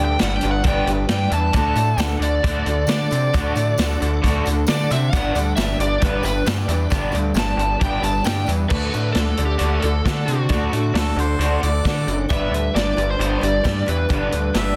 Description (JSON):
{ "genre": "folk rock and heartland rock", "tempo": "134 BPM", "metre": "4/4", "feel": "straight", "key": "D major", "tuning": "A4 = 440 Hz", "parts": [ { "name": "overdriven slide guitar", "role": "melody", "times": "0.0-14.7 s", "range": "F#4 to A5", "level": "-27 LUFS", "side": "equal", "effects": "digital delay" }, { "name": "picked old ladder-braced acoustic guitar", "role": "accompaniment", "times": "0.0-14.8 s", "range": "G2 to B4", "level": "-30 LUFS", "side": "equal", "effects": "none" }, { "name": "bright tonewheel organ", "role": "sustained chords", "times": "0.0-14.8 s", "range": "D4 to D5", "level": "-39 LUFS", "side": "equal", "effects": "none" }, { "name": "raw garage guitar", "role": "riff", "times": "0.0-14.7 s", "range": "D3 to F#4", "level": "-29 LUFS", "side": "equal", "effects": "overdrive" }, { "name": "gritty driven synth bass", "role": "bass", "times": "0.0-14.7 s", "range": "F#1 to D3", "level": "-24 LUFS", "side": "equal", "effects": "none" }, { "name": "vintage drum kit", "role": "drums", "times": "0.2-14.7 s", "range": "crash cymbal, hi-hat, kick drum, snare drum", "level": "-26 LUFS", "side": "equal", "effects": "none" }, { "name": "tambourine", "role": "percussion", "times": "1.5-8.6 s", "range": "none", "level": "-41 LUFS", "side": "equal", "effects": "none" }, { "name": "clear harmonica", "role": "second line", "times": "11.0-14.8 s", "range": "A4 to E5", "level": "-29 LUFS", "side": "equal", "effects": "none" } ], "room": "light reverb, small room ambience", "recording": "dense, heavily limited modern master", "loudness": "-20 LUFS", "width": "mono", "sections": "0.0-8.7 A section; 8.7-14.8 B section", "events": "electric slide guitar solo 0.0-8.7", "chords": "0.0 G; 1.6 D; 5.1 G; 8.7 D; 12.3 G", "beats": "0.21 0.66 1.11 | 1.56 2.00 2.45 2.90 | 3.35 3.79 4.24 4.69 | 5.14 5.58 6.03 6.48 | 6.93 7.37 7.82 8.27 | 8.72 9.16 9.61 10.06 | 10.51 10.96 11.41 11.86 | 12.30 12.75 13.20 13.65 | 14.10 14.54" }